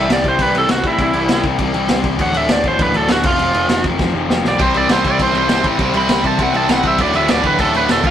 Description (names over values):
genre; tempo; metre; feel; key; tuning
punk rock; 200 BPM; 4/4; straight; unclear; A4 = 441 Hz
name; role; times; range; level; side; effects
biting lead guitar; melody; 0.0-8.1 s; E4 to B5; -17 LUFS; right 1 dB; overdrive
distorted electric guitar; riff; 0.0-8.1 s; D2 to C4; -20 LUFS; left 5 dB; distortion
fuzz picked electric bass; bass; 0.0-8.1 s; D1 to A2; -22 LUFS; equal; overdrive
raw garage drum kit; drums; 0.1-8.1 s; crash cymbal, kick drum, snare drum; -18 LUFS; equal; none
tight distorted guitar; riff; 4.6-8.1 s; D2 to C4; -20 LUFS; right 5 dB; distortion
room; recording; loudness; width
light reverb; rough rehearsal-room recording, tube saturation; -13 LUFS; side -10 dB against mid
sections
0.0-8.1 A section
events
lead electric guitar solo 0.0-8.1; drum fill 4.0-4.6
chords
0.0 C; 2.2 D5; 3.2 F5; 4.6 C5; 7.0 D5